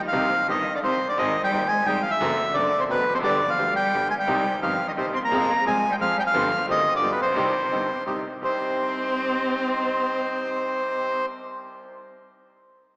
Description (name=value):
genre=tango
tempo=174 BPM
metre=3/4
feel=rubato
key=C minor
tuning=A4 = 440 Hz
part: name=rich cello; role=second line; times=0.0-11.2 s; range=B2 to C4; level=-30 LUFS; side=equal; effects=none
part: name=bandoneon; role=melody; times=0.1-11.3 s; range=B4 to C6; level=-23 LUFS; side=equal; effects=none
part: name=bright concert grand piano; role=accompaniment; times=0.1-11.9 s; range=Eb1 to Ab4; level=-30 LUFS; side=equal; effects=none
part: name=bandoneon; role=stabs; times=0.1-11.2 s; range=B3 to Ab4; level=-32 LUFS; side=equal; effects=none
part: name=warm double bass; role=bass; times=0.1-8.6 s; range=F1 to F2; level=-36 LUFS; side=equal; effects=none
room=wet church reverb, RT60 3.3 s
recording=recorded in a church or concert hall, small speaker sound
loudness=-21 LUFS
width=side -33 dB against mid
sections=0.1-8.4 A section; 8.4-10.5 B section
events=none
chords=0.1 Cm; 1.2 Ab; 2.2 D7/F#; 3.2 G; 4.3 Cm; 5.3 Fm; 6.3 G7sus4; 7.0 G7; 7.4 Cm